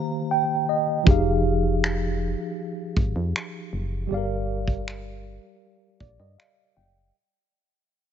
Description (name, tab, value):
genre	contemporary R&B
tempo	79 BPM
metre	4/4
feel	straight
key	unclear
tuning	A4 = 436 Hz
part	mellow tine electric piano	accompaniment	0.0-7.2 s	Eb3 to G5	-25 LUFS	right 1 dB	medium stereo tremolo
part	glassy synth bell	texture	0.0-1.4 s	Bb5	-42 LUFS	left 3 dB	chorus, tape echo
part	solid FM bass	bass	1.1-7.1 s	F1 to G2	-27 LUFS	equal	none
part	warm soul drum kit	drums	1.1-6.6 s	finger snaps, kick drum	-21 LUFS	equal	none
room	small room ambience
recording	nothing above 7.8 kHz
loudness	-22 LUFS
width	side -9 dB against mid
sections	0.0-1.1 A section; 1.1-7.1 B section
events	break 0.0-1.1; tine electric piano fill 0.0-1.1, 5.6-7.1; fade-out 1.1-7.1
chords	0.0 Eb69; 1.1 Fm9; 4.1 Gm7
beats	0.31 | 1.07 1.83 2.58 3.35 | 4.10 4.86 5.62 6.38